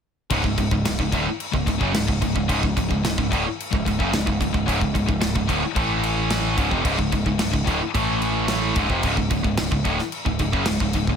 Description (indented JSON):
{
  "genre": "heavy metal",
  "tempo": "110 BPM",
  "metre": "4/4",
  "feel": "straight",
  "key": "unclear",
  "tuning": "A4 = 442 Hz",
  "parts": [
    { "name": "high-gain distorted guitar", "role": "riff", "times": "0.3-11.2 s", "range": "C#2 to A3", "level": "-25 LUFS", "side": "left 11 dB", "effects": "distortion" },
    { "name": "tight distorted guitar", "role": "riff", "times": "0.3-11.2 s", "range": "C#2 to A3", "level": "-25 LUFS", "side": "right 11 dB", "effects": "distortion" },
    { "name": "growling picked electric bass", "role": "bass", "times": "0.3-11.2 s", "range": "C#1 to A1", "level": "-27 LUFS", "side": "equal", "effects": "overdrive" },
    { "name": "modern studio drum kit", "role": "drums", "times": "0.3-11.2 s", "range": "crash cymbal, kick drum, snare drum", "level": "-25 LUFS", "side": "equal", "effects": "none" }
  ],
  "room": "small room ambience",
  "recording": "none",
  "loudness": "-20 LUFS",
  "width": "side -7 dB against mid",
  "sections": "0.3-11.2 A section",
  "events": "none",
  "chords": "0.3 C#5; 5.8 A5; 6.6 C#; 8.0 A5; 8.8 C#"
}